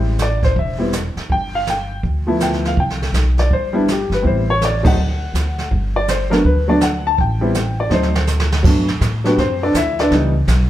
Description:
jazz piano trio; 163 BPM; 4/4; swing 64% on 8ths; G major; A4 = 441 Hz
clear concert grand piano; melody; 0.0-10.3 s; E3 to A5; -18 LUFS; left 1 dB
upright bass; bass; 0.0-10.7 s; E1 to A2; -19 LUFS; equal
jazz brush drum kit; drums; 0.2-10.7 s; brushed snare drum, crash cymbal, hi-hat, kick drum, ride cymbal, snare drum; -21 LUFS; right 2 dB
moderate large studio reverb, RT60 0.9 s; heard from further back in the room; -15 LUFS; side -13 dB against mid
0.0-8.6 A section; 8.6-10.7 B section
band accent 4.8; drum fill 7.9-8.6
0.0 Am7; 1.3 G13; 2.8 Cmaj7(no3); 4.2 Am9; 5.0 D; 5.7 Gmaj9; 7.2 A7(no3); 7.9 D7b9; 8.6 Gmaj9; 10.1 C#m7b5

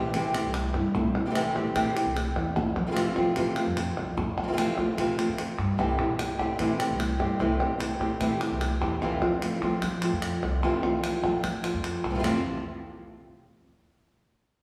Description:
flamenco; 149 BPM; 4/4; straight; F major; A4 = 440 Hz
flamenco guitar; melody; 0.0-12.4 s; F2 to G4; -30 LUFS; equal
flamenco guitar; stabs; 0.0-12.4 s; F2 to F4; -36 LUFS; equal
upright bass; bass; 0.0-12.4 s; F1 to F3; -34 LUFS; equal
palmas hand claps; percussion; 0.1-12.3 s; -36 LUFS; equal
wet concert hall reverb, RT60 1.9 s; recorded in a church or concert hall, studio ambience; -27 LUFS; mono
0.0-12.2 A section; 12.2-13.9 B section
0.0 C6; 9.0 Fmaj7

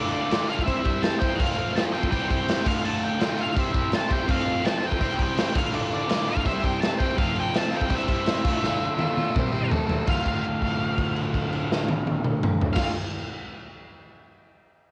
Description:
garage rock duo or trio; 166 BPM; 4/4; straight; D minor; A4 = 439 Hz
octave-fuzz lead guitar; melody; 0.0-12.9 s; D5 to A5; -33 LUFS; equal; distortion, cassette tape
overdriven electric guitar; riff; 0.0-12.9 s; D2 to C5; -29 LUFS; equal; cassette tape
raw garage drum kit; drums; 0.1-12.8 s; crash cymbal, kick drum, snare drum, toms; -28 LUFS; equal; vintage 12-bit sampler grit, cassette tape
light reverb, studio ambience; home recording on cassette; -25 LUFS; mono
0.0-10.1 A section; 10.1-13.0 B section
drum fill 8.6-10.1; held note 10.1-12.8
0.0 Dm; 0.7 C; 1.4 F; 2.1 C; 2.7 Dm; 3.6 C; 4.3 F; 5.0 C; 5.5 Dm; 6.4 C; 7.2 F; 7.9 C; 8.4 Dm; 9.3 C; 9.7 Am; 10.1 Dm

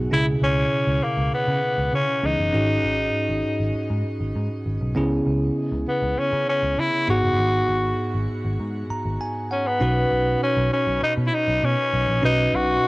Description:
1980s-style pop; 99 BPM; 4/4; straight; C# minor; A4 = 440 Hz
bell-like tine electric piano; accompaniment; 0.0-12.9 s; G#2 to A#5; -25 LUFS; right 1 dB; cassette tape, shimmer reverb
vintage muted picked electric bass; bass; 0.0-12.8 s; F#1 to C#3; -25 LUFS; equal
raspy tenor saxophone; melody; 0.1-12.9 s; A#3 to F#4; -23 LUFS; left 1 dB; cassette tape, shimmer reverb
moderate booth ambience, RT60 0.3 s; home recording on cassette; -20 LUFS; side -22 dB against mid
0.0-9.8 A section; 9.8-12.9 B section
tine electric piano fill 8.6-9.8
0.1 C#m7; 2.5 G#7sus4; 5.0 C#m7; 7.1 G#m7; 9.8 Badd9

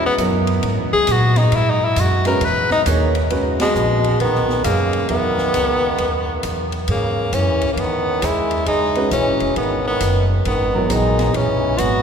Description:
modal jazz; 134 BPM; 4/4; swing 65% on 8ths; C# dorian; A4 = 439 Hz
edgy tenor saxophone; melody; 0.0-12.0 s; G#3 to B4; -19 LUFS; left 2 dB
clear upright piano; accompaniment; 0.0-11.3 s; E3 to E5; -24 LUFS; right 1 dB
upright bass; bass; 0.0-12.0 s; E1 to A#2; -21 LUFS; equal
open jazz drum kit; drums; 0.2-11.9 s; hi-hat, ride cymbal, snare drum; -30 LUFS; left 1 dB
clear trombone; second line; 3.6-12.0 s; B2 to B3; -22 LUFS; right 4 dB
wet cathedral reverb, RT60 6.5 s; recorded in a church or concert hall; -15 LUFS; side -7 dB against mid
0.0-3.3 A section; 3.3-12.0 B section
tenor saxophone solo 0.0-3.3; band accent 3.5
0.0 C#m9

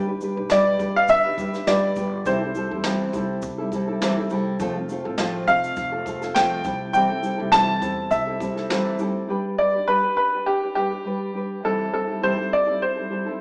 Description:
acoustic pop; 102 BPM; 4/4; swing 55% on 16ths; C major; A4 = 440 Hz
nylon-string guitar; accompaniment; 0.0-13.4 s; C3 to B4; -25 LUFS; equal
upright bass; bass; 0.0-9.3 s; F1 to E2; -36 LUFS; equal
jazz brush drum kit; drums; 0.2-9.1 s; kick drum, shaker, snare drum; -30 LUFS; equal
clear upright piano; melody; 0.5-13.4 s; G4 to A5; -20 LUFS; equal
moderate recital hall reverb, RT60 1.6 s; recorded in a church or concert hall, small speaker sound; -20 LUFS; side -40 dB against mid
0.0-9.3 A section; 9.3-13.4 B section
0.0 G; 2.3 C6; 4.6 F; 6.6 C6; 9.3 G; 11.6 C6

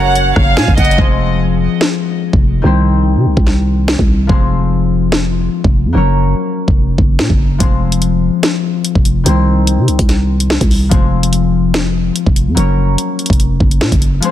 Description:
hip hop, drill; 145 BPM; 4/4; half-time; F minor; A4 = 440 Hz
dark studio violin section; melody; 0.0-0.9 s; Eb5 to Gb5; -17 LUFS; right 1 dB; ping-pong delay
breathy bright jazz flute; second line; 0.0-1.0 s; Gb5 to Bb5; -24 LUFS; right 6 dB; ping-pong delay
concert harp; accompaniment; 0.0-14.3 s; Eb3 to Db5; -17 LUFS; left 6 dB
mellow woodwind section; sustained chords; 0.0-1.0, 14.2-14.3 s; F3 to Db5; -22 LUFS; right 2 dB; stereo widening
growling 808-style bass; bass; 0.0-14.2 s; F1 to C3; -14 LUFS; equal
drill drum kit; drums; 0.2-14.3 s; hi-hat, kick drum, rim click, snare drum; -13 LUFS; equal
small room ambience; dense, heavily limited modern master; -10 LUFS; side -12 dB against mid
1.0-14.3 A section
break 1.0-7.6
0.0 Gb; 1.0 Fm; 2.6 Cm7; 4.3 Fm; 5.9 Gb; 7.6 Fm; 9.3 Cm7; 10.9 Fm; 12.6 Gb

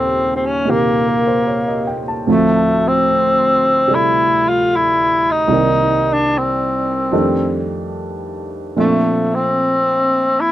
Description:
jazz; 74 BPM; 4/4; swing 68% on 8ths; A4 = 442 Hz
breathy tenor saxophone; melody; 0.0-10.5 s; A3 to F4; -15 LUFS; left 1 dB
warm upright piano; accompaniment; 0.0-10.5 s; C2 to A5; -18 LUFS; right 2 dB
little or no reverb; close, detailed microphones; -13 LUFS; side -13 dB against mid
0.0-10.5 A section
0.0 Eb7#11; 2.3 Dm7; 5.5 Cm7; 7.1 F13; 8.8 Bbmaj9#11

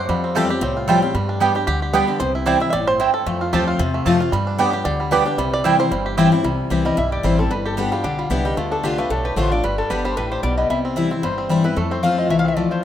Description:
bluegrass; 226 BPM; 4/4; swing 55% on 8ths; C major; A4 = 441 Hz
bluegrass banjo; melody; 0.0-12.8 s; D3 to E5; -24 LUFS; right 3 dB
picked steel-string acoustic guitar; accompaniment; 0.0-12.8 s; F2 to G4; -20 LUFS; left 3 dB
upright bass; bass; 0.1-12.6 s; G1 to G2; -26 LUFS; right 1 dB
mandolin; stabs; 0.3-6.3 s; A3 to A5; -22 LUFS; right 6 dB
lap resonator guitar; melody; 6.9-12.8 s; Eb4 to F5; -24 LUFS; left 3 dB
moderate plate reverb, RT60 2.5 s; rough home demo mix; -17 LUFS; side -10 dB against mid
0.0-6.4 A section; 6.4-12.8 B section
five-string banjo solo 0.0-6.4
0.1 Fadd9; 1.1 G; 2.2 C; 3.3 F; 4.3 G; 5.4 C; 7.5 G; 8.6 Dm; 9.6 G; 10.7 C; 11.8 F

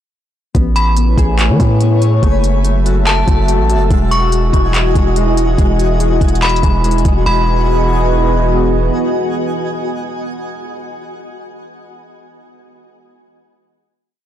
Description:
hip hop, atmospheric cloud-rap; 143 BPM; 4/4; half-time; E major; A4 = 440 Hz
dark analog pad; sustained chords; 1.0-10.9 s; E3 to E5; -19 LUFS; equal; chorus, sidechain pumping
Celtic harp; arpeggios; 0.5-10.9 s; G#3 to E5; -24 LUFS; left 8 dB; tape echo
long sustained 808-style bass; bass; 0.5-8.9 s; E1 to E3; -14 LUFS; equal; transformer saturation
smooth R&B drum kit; drums; 0.5-7.1 s; handclaps, hi-hat, kick drum; -16 LUFS; equal
twinkling granular texture; texture; 1.1-10.9 s; F#4 to B5; -24 LUFS; left 1 dB; built-in reverb
metallic FM bell; melody; 0.8-8.5 s; A5 to C#6; -20 LUFS; left 2 dB; chorus, tape echo
little or no reverb; blown-out, overdriven recording, overdrive; -11 LUFS; side -11 dB against mid
0.5-7.3 verse; 7.3-10.6 final chord
0.5 Amaj9; 2.2 F#m7; 3.9 Emaj9

